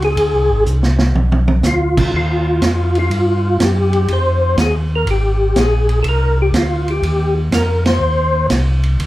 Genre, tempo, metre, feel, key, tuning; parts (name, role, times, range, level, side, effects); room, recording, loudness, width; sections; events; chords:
soul jazz organ trio; 123 BPM; 4/4; swing 68% on 8ths; A4 = 440 Hz
percussive tonewheel organ; melody; 0.0-8.5 s; F4 to C5; -17 LUFS; left 1 dB; slow rotary speaker, chorus vibrato
mellow tonewheel organ; bass; 0.0-9.1 s; Ab1 to G2; -16 LUFS; equal; chorus vibrato, slow rotary speaker
vintage drum kit; drums; 0.0-9.1 s; crash cymbal, hi-hat, kick drum, ride cymbal, snare drum, toms; -20 LUFS; right 2 dB
wet club reverb, RT60 0.5 s; heard from further back in the room; -13 LUFS; side -16 dB against mid
0.0-2.1 A section; 2.1-9.1 B section
tonewheel organ solo 0.0-2.1; drum fill 0.7-1.6; band accent 7.8
0.2 Ab; 1.2 Bdim; 2.1 Ebadd9; 4.1 Fm9; 6.0 Cmadd9